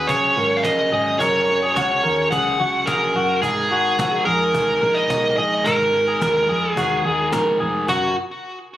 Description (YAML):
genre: jangly indie pop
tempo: 108 BPM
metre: 4/4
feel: straight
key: F# major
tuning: A4 = 440 Hz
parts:
  - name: smooth overdriven lead guitar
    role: melody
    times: 0.0-8.1 s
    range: F#4 to F#5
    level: -20 LUFS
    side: right 1 dB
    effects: none
  - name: crunchy overdriven guitar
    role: accompaniment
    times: 0.0-8.1 s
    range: G#2 to A#4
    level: -27 LUFS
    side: right 3 dB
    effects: none
  - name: electric guitar through a small old amp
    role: arpeggios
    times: 0.0-8.1 s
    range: F#4 to A#4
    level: -22 LUFS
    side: left 1 dB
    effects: none
  - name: fingered electric bass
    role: bass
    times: 0.0-8.1 s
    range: E#1 to E#2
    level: -29 LUFS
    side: equal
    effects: none
  - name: cajon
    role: drums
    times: 0.1-8.0 s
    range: none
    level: -31 LUFS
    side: equal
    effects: none
room: moderate large studio reverb, RT60 1.0 s, small room reverb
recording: recorded on a phone in the room, studio reverb, compression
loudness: -17 LUFS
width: side -13 dB against mid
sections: 0.0-7.9 A section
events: none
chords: 0.0 F#sus2; 3.4 G#sus2; 7.9 F#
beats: 0.09 0.65 | 1.20 1.76 2.32 2.88 | 3.43 3.99 4.54 5.10 | 5.66 6.21 6.77 7.33 | 7.88